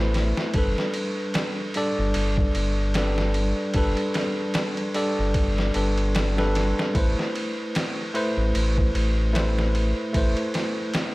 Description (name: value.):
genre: trip hop.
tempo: 75 BPM.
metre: 4/4.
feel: swing 57% on 16ths.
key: unclear.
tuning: A4 = 440 Hz.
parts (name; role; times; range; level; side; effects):
bell-like tine electric piano; accompaniment; 0.0-11.1 s; G3 to D5; -26 LUFS; equal; harmonic tremolo, vintage 12-bit sampler grit, tape echo.
round analog bass; bass; 0.0-10.3 s; G1 to A1; -24 LUFS; equal; none.
trip hop sampler-style drum kit; drums; 0.1-11.1 s; kick drum, ride cymbal, snare drum; -27 LUFS; equal; overdrive.
room: little or no reverb.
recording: vinyl crackle.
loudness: -21 LUFS.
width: side -20 dB against mid.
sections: 0.0-11.1 A section.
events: none.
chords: 0.0 Amadd9; 0.5 Gadd9; 6.9 Amadd9.